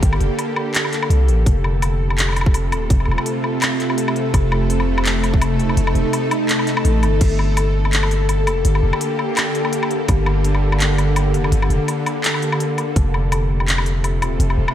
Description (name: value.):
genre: half-time drum and bass.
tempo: 167 BPM.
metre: 4/4.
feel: swing 56% on 16ths, half-time.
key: G minor.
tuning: A4 = 440 Hz.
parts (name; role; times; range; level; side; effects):
bowed-like drone; sustained chords; 0.0-14.7 s; C3 to A4; -21 LUFS; equal; built-in reverb, sidechain pumping.
long sustained 808-style bass; bass; 0.0-14.7 s; Eb1 to C2; -18 LUFS; equal; none.
drum and bass drum kit; drums; 0.0-14.7 s; crash cymbal, handclaps, hi-hat, woodblock; -23 LUFS; left 1 dB; none.
electronic kick drum; drums; 0.0-7.3, 10.1-10.2, 13.0 s; none; -16 LUFS; equal; none.
room: moderate lush hall reverb, RT60 2.4 s.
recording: dreamy mix soaked in reverb.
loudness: -16 LUFS.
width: side -11 dB against mid.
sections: 0.0-7.2 A section; 7.2-14.7 A section.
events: drop 0.0-7.2, 7.2-14.7; kick drops out 5.8-7.2.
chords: 0.0 Gmadd9; 1.5 F; 7.2 Gmadd9; 13.0 F.